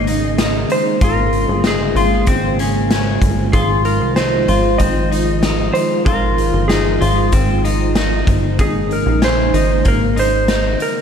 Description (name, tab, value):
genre	dream pop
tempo	95 BPM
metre	4/4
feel	straight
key	Ab major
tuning	A4 = 437 Hz
part	clean lap steel guitar	melody	0.0-11.0 s	Ab4 to Eb5	-20 LUFS	equal	digital delay
part	string machine, violas	sustained chords	0.0-11.0 s	Db3 to C5	-20 LUFS	right 2 dB	ensemble chorus
part	clean electric guitar	arpeggios	0.0-11.0 s	Bb3 to F4	-21 LUFS	left 4 dB	lush chorus, digital delay
part	plucky analog bass	bass	0.0-10.8 s	G1 to C2	-19 LUFS	equal	none
part	raw garage drum kit	drums	0.1-10.9 s	hi-hat, kick drum, snare drum	-20 LUFS	equal	none
room	light reverb, small room ambience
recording	none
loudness	-13 LUFS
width	side -7 dB against mid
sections	0.0-11.0 A section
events	none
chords	0.0 Eb7sus4/Ab; 1.0 Bbm9; 3.5 Ab6; 8.6 Eb7sus4/Ab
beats	0.38 | 1.01 1.64 2.27 2.91 | 3.54 4.17 4.80 5.43 | 6.06 6.70 7.33 7.96 | 8.59 9.22 9.85 10.48